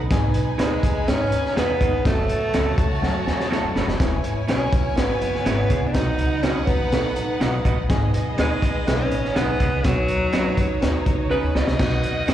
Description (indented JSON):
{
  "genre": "uptempo 1960s-style soul",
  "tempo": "123 BPM",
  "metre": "4/4",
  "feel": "straight",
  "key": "unclear",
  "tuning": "A4 = 441 Hz",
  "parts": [
    { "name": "warm symphonic violin section", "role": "second line", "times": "0.0-12.3 s", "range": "B3 to A5", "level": "-30 LUFS", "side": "equal", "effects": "plate reverb, slapback echo" },
    { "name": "upright bass", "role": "bass", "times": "0.0-12.3 s", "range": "E1 to G#2", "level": "-25 LUFS", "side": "equal", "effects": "none" },
    { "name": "dark upright piano", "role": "accompaniment", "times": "0.1-12.3 s", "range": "F#3 to B5", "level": "-29 LUFS", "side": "left 4 dB", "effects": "plate reverb, slapback echo" },
    { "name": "crunchy breakbeat drum kit", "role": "drums", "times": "0.1-12.3 s", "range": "crash cymbal, hi-hat, kick drum, snare drum", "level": "-23 LUFS", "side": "equal", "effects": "none" },
    { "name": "breathy alto saxophone", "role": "melody", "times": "0.6-12.3 s", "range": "F#3 to D#5", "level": "-25 LUFS", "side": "right 1 dB", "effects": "plate reverb, slapback echo, tape echo" },
    { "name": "electric guitar through a small old amp", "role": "stabs", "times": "0.6-12.3 s", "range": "B3 to D#5", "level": "-32 LUFS", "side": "right 8 dB", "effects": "plate reverb, slapback echo, tape echo" }
  ],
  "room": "light reverb",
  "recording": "live gig heard through the venue's PA, club reverb",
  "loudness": "-19 LUFS",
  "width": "side -11 dB against mid",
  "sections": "0.0-11.8 A section",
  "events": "upright piano fill 2.5-4.0; drum fill 3.0-4.0, 11.3-11.8",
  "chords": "0.1 G#m; 2.1 F#m; 4.0 E6; 5.9 B; 7.9 G#m; 9.8 Badd9; 11.8 B"
}